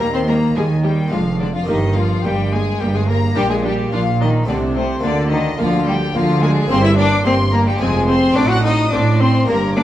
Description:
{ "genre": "classical, baroque-style concerto movement with solo episodes", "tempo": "108 BPM", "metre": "3/4", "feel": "straight", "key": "Eb major", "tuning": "A4 = 440 Hz", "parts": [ { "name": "rich cello", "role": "melody", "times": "0.0-9.8 s", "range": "C3 to F#4", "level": "-20 LUFS", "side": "left 2 dB", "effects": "none" }, { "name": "rich chamber violin section", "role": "melody", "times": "0.0-9.8 s", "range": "C5 to F#6", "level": "-26 LUFS", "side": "left 4 dB", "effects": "none" }, { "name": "rich chamber violin section", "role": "second line", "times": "0.0-9.8 s", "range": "C4 to F#5", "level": "-24 LUFS", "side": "left 2 dB", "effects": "none" }, { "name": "harpsichord", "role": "accompaniment", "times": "0.0-9.8 s", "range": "F2 to G4", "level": "-26 LUFS", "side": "equal", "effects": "none" }, { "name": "warm chamber viola section", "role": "accompaniment", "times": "0.0-9.8 s", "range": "G3 to D4", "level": "-26 LUFS", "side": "right 1 dB", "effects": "none" }, { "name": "rich chamber double bass section", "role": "bass", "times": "0.0-9.8 s", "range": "F1 to Eb2", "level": "-21 LUFS", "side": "right 3 dB", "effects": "none" }, { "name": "warm chamber cello section", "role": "bass", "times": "0.0-9.8 s", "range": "F2 to Eb3", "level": "-20 LUFS", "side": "right 1 dB", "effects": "none" } ], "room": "wet recital hall reverb, RT60 1.5 s", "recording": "dark, warm production", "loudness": "-14 LUFS", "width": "side -13 dB against mid", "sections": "0.0-9.8 A section", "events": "none", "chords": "0.0 Eb; 1.1 Ddim/F; 1.7 Eb/G; 3.4 Bb; 4.5 Adim/C; 5.0 Bb/D; 6.7 C7/G; 7.8 Fm; 8.4 D7/A", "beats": "| 0.00 0.56 1.12 | 1.68 2.24 2.81 | 3.37 3.92 4.48 | 5.04 5.59 6.15 | 6.70 7.26 7.82 | 8.37 8.93 9.49" }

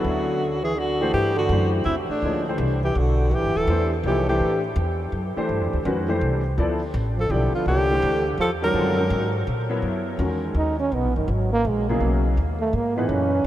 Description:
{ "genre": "modal jazz", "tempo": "166 BPM", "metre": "3/4", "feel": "swing 64% on 8ths", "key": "D mixolydian, B major from 9.8 s", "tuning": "A4 = 442 Hz", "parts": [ { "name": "breathy alto saxophone", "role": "melody", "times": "0.0-4.6, 7.2-9.4 s", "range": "D4 to Bb4", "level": "-26 LUFS", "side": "left 1 dB", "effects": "analog delay" }, { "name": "mellow trombone", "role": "second line", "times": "0.0-4.6, 7.2-13.5 s", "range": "A2 to D#4", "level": "-26 LUFS", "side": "right 2 dB", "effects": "analog delay" }, { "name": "warm concert grand piano", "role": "accompaniment", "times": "0.0-13.4 s", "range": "A#2 to D5", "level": "-27 LUFS", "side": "left 1 dB", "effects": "ensemble chorus" }, { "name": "upright bass", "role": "bass", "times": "0.0-13.5 s", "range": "D1 to A#2", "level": "-24 LUFS", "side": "equal", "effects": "none" } ], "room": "moderate huge ambient reverb, RT60 8.5 s", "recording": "dreamy mix soaked in reverb", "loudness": "-20 LUFS", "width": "side -13 dB against mid", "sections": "0.0-1.1 A section; 1.1-9.8 B section; 9.8-13.5 C section", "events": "trombone solo 9.8-13.5", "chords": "0.0 Dadd9; 1.1 D9sus4; 5.5 G9sus4; 8.7 F#13; 9.8 Bmaj9", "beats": "| 0.04 0.41 0.77 | 1.13 1.50 1.86 | 2.22 2.58 2.95 | 3.31 3.67 4.04 | 4.40 4.76 5.12 | 5.49 5.85 6.21 | 6.57 6.93 7.30 | 7.66 8.02 8.38 | 8.74 9.11 9.47 | 9.83 10.19 10.56 | 10.92 11.28 11.64 | 12.01 12.37 12.73 | 13.10 13.46" }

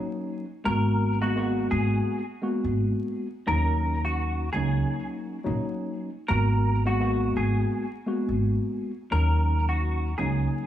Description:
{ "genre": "hip hop, boom-bap hip-hop", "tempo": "85 BPM", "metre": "4/4", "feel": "swing 62% on 16ths", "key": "G# minor", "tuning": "A4 = 440 Hz", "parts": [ { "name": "mellow tine electric piano", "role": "accompaniment", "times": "0.0-10.7 s", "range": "F#3 to F#4", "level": "-28 LUFS", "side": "left 1 dB", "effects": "medium stereo tremolo, high-pass filter, low-pass filter, plate reverb" }, { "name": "semi-hollow electric guitar", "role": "melody", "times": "0.7-10.7 s", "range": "F#4 to A#4", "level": "-31 LUFS", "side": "right 1 dB", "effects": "ensemble chorus, high-pass filter, low-pass filter, plate reverb, tape echo" }, { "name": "upright bass", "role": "bass", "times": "0.7-10.5 s", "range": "G#1 to D#2", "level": "-25 LUFS", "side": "right 1 dB", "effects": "none" } ], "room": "light reverb", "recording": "vinyl crackle, small room ambience", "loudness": "-24 LUFS", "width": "side -12 dB against mid", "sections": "0.0-10.7 A section", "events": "none", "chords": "0.0 D#m7; 0.7 G#m9; 3.5 D#m7; 6.3 G#m9; 9.1 D#m7", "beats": "| 0.65 1.36 2.06 2.77 | 3.48 4.18 4.89 5.59 | 6.30 7.00 7.71 8.42 | 9.12 9.83 10.53" }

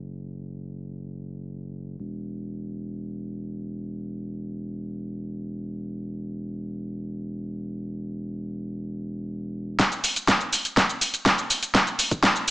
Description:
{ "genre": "progressive house", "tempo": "free time", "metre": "none", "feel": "none", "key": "unclear", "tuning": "A4 = 439 Hz", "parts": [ { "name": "saturated sub bass", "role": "bass", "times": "0.0-9.8 s", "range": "E1 to F#1", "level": "-33 LUFS", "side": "equal", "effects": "sidechain pumping" }, { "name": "electronic kick drum", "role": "drums", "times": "9.8-12.3 s", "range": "none", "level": "-28 LUFS", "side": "equal", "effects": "overdrive, small room ambience" }, { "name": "pop drum kit", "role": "drums", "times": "9.8-12.5 s", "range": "hi-hat, shaker, snare drum", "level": "-20 LUFS", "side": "equal", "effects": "small room ambience, sidechain pumping on hats, sidechain pumping on perc" } ], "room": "light reverb", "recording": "small speaker sound", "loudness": "-25 LUFS", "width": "side -19 dB against mid", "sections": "0.0-9.8 A section; 9.8-12.5 B section", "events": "build-up 9.8-12.5; drum fill 9.8-12.5", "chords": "none", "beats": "free time" }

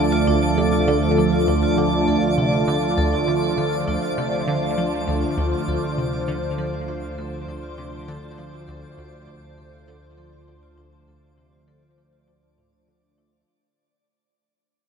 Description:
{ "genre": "ambient, sequencer-driven space music", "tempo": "100 BPM", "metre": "4/4", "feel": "straight", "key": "D minor", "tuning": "A4 = 440 Hz", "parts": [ { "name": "phased analog pad", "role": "sustained chords", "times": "0.0-13.5 s", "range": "D3 to C5", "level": "-22 LUFS", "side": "right 2 dB", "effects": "phaser, chorus" }, { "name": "vibraphone with medium hard mallets", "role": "arpeggios", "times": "0.0-13.5 s", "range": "D4 to A5", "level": "-30 LUFS", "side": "left 3 dB", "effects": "auto-pan, ping-pong delay" }, { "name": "tight sequenced synth", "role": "riff", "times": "0.0-13.3 s", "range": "D2 to A3", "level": "-27 LUFS", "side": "equal", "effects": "chorus, phaser, ping-pong delay" }, { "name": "fat analog bass", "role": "bass", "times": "0.0-13.4 s", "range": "D2", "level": "-31 LUFS", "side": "equal", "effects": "tube saturation" }, { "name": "twinkling granular texture", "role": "texture", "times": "0.0-13.5 s", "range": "D5", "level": "-29 LUFS", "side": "right 1 dB", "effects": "built-in reverb" } ], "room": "wet huge ambient reverb, RT60 8.3 s", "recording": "none", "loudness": "-19 LUFS", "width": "side -6 dB against mid", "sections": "0.0-13.5 A section", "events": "fade-out on synth arpeggio sound 0.0-13.5; fade-out on vibraphone 0.0-13.5; fade-out 0.0-13.5", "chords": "0.0 Dm", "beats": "0.28 0.88 | 1.48 2.08 2.67 3.27 | 3.88 4.47 5.08 5.67 | 6.28 6.88 7.47 8.07 | 8.68 9.28 9.88 10.47 | 11.07 11.68 12.28 12.88" }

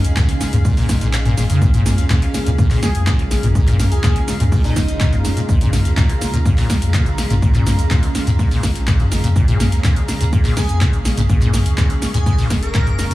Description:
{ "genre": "acid house", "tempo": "124 BPM", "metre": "4/4", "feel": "straight", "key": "Bb minor pentatonic", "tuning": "A4 = 440 Hz", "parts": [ { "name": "warm analog pad", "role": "sustained chords", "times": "0.0-13.1 s", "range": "Db3 to Ab4", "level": "-28 LUFS", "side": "right 2 dB", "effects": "chorus, sidechain pumping" }, { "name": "warm sub bass", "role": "bass", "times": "0.0-13.1 s", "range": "F1 to F2", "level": "-19 LUFS", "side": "equal", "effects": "sidechain pumping" }, { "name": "breakbeat sampler-style drum kit", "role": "drums", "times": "0.0-13.1 s", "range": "hi-hat, snare drum", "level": "-37 LUFS", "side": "right 1 dB", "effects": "none" }, { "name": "punchy analog drum machine", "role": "drums", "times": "0.0-13.1 s", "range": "handclaps, hi-hat, shaker, snare drum, toms", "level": "-21 LUFS", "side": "equal", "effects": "overdrive, studio reverb" }, { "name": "granular cloud pad", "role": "texture", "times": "0.0-13.1 s", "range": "Db4 to Db6", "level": "-29 LUFS", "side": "equal", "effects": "built-in reverb, sidechain pumping" }, { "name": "acid bass, saw", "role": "riff", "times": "0.2-13.1 s", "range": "Bb1 to Db4", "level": "-21 LUFS", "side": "left 1 dB", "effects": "lush chorus, cassette tape, sidechain pumping, analog delay" }, { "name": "electronic kick drum", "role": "drums", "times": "0.2-12.8 s", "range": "none", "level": "-16 LUFS", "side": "equal", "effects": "overdrive, studio reverb" }, { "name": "airy dreamy lead", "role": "melody", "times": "2.8-5.1, 10.6-13.1 s", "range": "Eb4 to Bb4", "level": "-28 LUFS", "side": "equal", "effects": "chorus, analog delay" } ], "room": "light reverb, digital ambience", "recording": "echo-heavy mix, small room ambience", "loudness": "-14 LUFS", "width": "side -16 dB against mid", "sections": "0.0-13.1 A section", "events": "kick drops out 1.1-1.6", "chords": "0.0 Bbm7", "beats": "0.17 0.65 1.13 | 1.62 2.10 2.58 3.07 | 3.55 4.04 4.52 5.00 | 5.49 5.97 6.46 6.94 | 7.42 7.91 8.39 8.88 | 9.36 9.84 10.33 10.81 | 11.29 11.78 12.26 12.75" }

